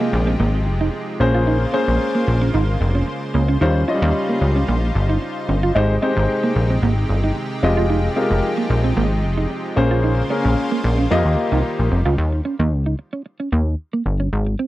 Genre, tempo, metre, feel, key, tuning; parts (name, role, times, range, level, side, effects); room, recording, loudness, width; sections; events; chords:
funk; 112 BPM; 4/4; straight; A4 = 442 Hz
warm grand piano; accompaniment; 0.0-12.0 s; F3 to Eb5; -20 LUFS; left 2 dB
lush unison pad; sustained chords; 0.0-12.2 s; C3 to C5; -26 LUFS; equal; chorus
mellow electric guitar; riff; 0.0-14.7 s; Bb3 to F4; -23 LUFS; right 4 dB; analog chorus
plucky analog bass; bass; 0.1-14.6 s; F1 to F2; -18 LUFS; equal
little or no reverb; dry, close 1970s-style studio recording; -16 LUFS; side -16 dB against mid
0.0-12.2 A section; 12.2-14.7 B section
0.0 Fm9; 1.2 Bbm9; 3.6 Eb13; 5.8 Abmaj7; 7.6 Fm9; 9.8 Bbm9; 11.1 F9sus4; 12.2 Eb7